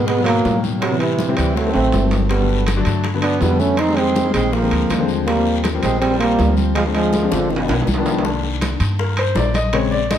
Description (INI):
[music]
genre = Afro-Cuban jazz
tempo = 162 BPM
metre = 4/4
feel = straight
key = unclear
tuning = A4 = 440 Hz
[part]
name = mellow trombone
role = melody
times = 0.0-7.9 s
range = Eb3 to Eb4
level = -20 LUFS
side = right 2 dB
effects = none
[part]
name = breathy tenor saxophone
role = second line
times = 0.0-7.9 s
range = B2 to C4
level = -24 LUFS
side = right 4 dB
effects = none
[part]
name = warm baby grand piano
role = accompaniment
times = 0.0-10.2 s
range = Cb3 to Eb5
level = -22 LUFS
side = left 5 dB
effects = none
[part]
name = upright bass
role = bass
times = 0.0-10.2 s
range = G1 to A2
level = -21 LUFS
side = equal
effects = none
[part]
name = bongos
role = percussion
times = 0.1-10.2 s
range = none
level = -30 LUFS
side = left 6 dB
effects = none
[part]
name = congas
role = percussion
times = 0.1-10.2 s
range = none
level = -27 LUFS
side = left 1 dB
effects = none
[part]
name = guiro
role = percussion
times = 0.1-10.2 s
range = none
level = -33 LUFS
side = left 7 dB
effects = none
[part]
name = timbales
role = percussion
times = 0.1-10.2 s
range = none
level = -27 LUFS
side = right 3 dB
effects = none
[sound]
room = moderate large studio reverb, RT60 1.3 s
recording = none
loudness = -15 LUFS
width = side -10 dB against mid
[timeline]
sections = 0.0-8.2 A section; 8.2-10.2 B section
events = drum fill 1.7-2.3, 7.3-8.2; grand piano solo 8.2-10.2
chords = 0.0 Abm9; 0.8 Am7; 1.6 D7b9; 2.3 Gmaj7; 3.8 Fm11; 4.5 Bb7; 5.3 Eb69; 6.8 Dm7b5; 7.5 G7b13; 8.2 Cm9